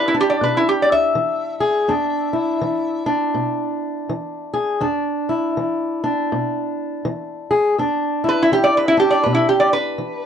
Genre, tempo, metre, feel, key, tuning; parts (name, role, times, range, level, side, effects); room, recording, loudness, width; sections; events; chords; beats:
acoustic country blues, solo or duo; 82 BPM; 4/4; swing 62% on 8ths; E mixolydian; A4 = 440 Hz
lap resonator guitar; melody; 0.0-3.1, 8.3-10.3 s; E4 to E5; -16 LUFS; equal
fingerpicked steel-string acoustic guitar; accompaniment; 0.0-10.3 s; E2 to G#4; -20 LUFS; left 1 dB
light reverb; worn, warbling old tape, cassette tape, warbly pitch drift; -17 LUFS; side -8 dB against mid
0.0-10.3 A section
resonator guitar played with a steel bar solo 0.0-10.3
0.0 E7(no3)
0.43 1.16 | 1.90 2.63 3.36 4.10 | 4.83 5.57 6.30 7.04 | 7.77 8.51 9.24 9.98